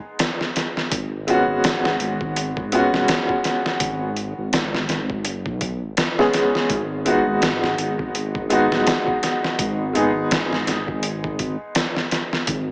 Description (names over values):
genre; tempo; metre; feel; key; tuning
trip hop; 83 BPM; 4/4; swing 57% on 16ths; G# minor; A4 = 440 Hz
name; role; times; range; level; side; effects
bright upright piano; accompaniment; 0.0-12.5 s; G#3 to G#4; -21 LUFS; equal; tremolo, tape echo
trip hop sampler-style drum kit; drums; 0.2-12.7 s; hi-hat, kick drum, snare drum; -22 LUFS; equal; none
dark detuned saw bass; bass; 0.9-12.7 s; D#1 to B1; -26 LUFS; equal; none
room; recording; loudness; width
moderate spring reverb, RT60 2.7 s; echo-heavy mix, small speaker sound; -18 LUFS; side -36 dB against mid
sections
0.0-12.7 A section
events
none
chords
0.0 G#m; 0.9 C#7sus4; 6.7 G#m7